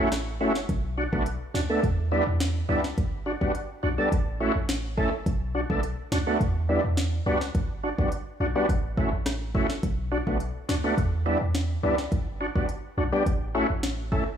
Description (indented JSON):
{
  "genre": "dancehall",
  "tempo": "105 BPM",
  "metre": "4/4",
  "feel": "straight",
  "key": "B minor",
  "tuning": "A4 = 440 Hz",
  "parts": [
    { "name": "overdriven tonewheel organ", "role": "accompaniment", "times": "0.0-14.2 s", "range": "G3 to A4", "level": "-27 LUFS", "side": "equal", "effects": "chorus vibrato, slow rotary speaker, sidechain pumping" },
    { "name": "clean 808-style bass", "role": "bass", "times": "0.0-14.4 s", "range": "F#1 to E2", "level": "-29 LUFS", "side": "equal", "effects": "none" },
    { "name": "afro-pop drum kit", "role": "drums", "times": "0.1-14.3 s", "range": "hi-hat, kick drum, rim click, snare drum", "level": "-29 LUFS", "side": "equal", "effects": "none" }
  ],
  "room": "light reverb, digital ambience",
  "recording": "studio ambience",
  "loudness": "-24 LUFS",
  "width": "side -8 dB against mid",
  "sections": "0.7-14.4 A section",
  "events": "break 0.0-0.7",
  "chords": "0.0 F#m7/A; 0.7 Bm7; 1.8 Em7; 3.0 Gmaj7; 4.1 F#m7/A; 5.3 Bm7; 6.4 Em7; 7.5 Gmaj7; 8.7 F#m7/A; 9.8 Bm7; 11.0 Em7; 12.1 Gmaj7; 13.3 F#m7/A",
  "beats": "0.12 | 0.69 1.26 1.83 2.40 | 2.98 3.55 4.12 4.69 | 5.26 5.83 6.40 6.98 | 7.55 8.12 8.69 9.26 | 9.83 10.40 10.98 11.55 | 12.12 12.69 13.26 13.83"
}